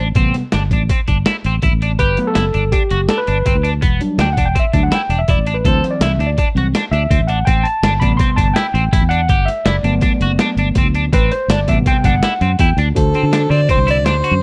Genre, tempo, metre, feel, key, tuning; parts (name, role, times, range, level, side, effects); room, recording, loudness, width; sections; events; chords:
progressive instrumental, band music in an uneven meter; 164 BPM; 5/4; straight; A dorian; A4 = 440 Hz
overdriven tine electric piano; accompaniment; 0.0-14.4 s; C3 to C6; -22 LUFS; equal
clean electric guitar; arpeggios; 0.0-14.3 s; B3 to A4; -24 LUFS; equal; analog chorus
fingered electric bass; bass; 0.0-14.4 s; E1 to D3; -19 LUFS; equal
boom bap sampler-style drum kit; drums; 0.2-14.3 s; hi-hat, kick drum, snare drum; -20 LUFS; equal
clear soprano saxophone; melody; 13.0-14.4 s; A4 to D5; -20 LUFS; equal
digital ambience; dry, close 1970s-style studio recording; -15 LUFS; mono
0.0-13.0 A section; 13.0-14.4 B section
tine electric piano solo 0.0-13.0
0.2 Am7; 2.0 Gmaj7; 3.8 Em7; 5.6 D7; 7.5 Am7; 9.3 Gmaj7; 11.1 Am7; 13.0 D7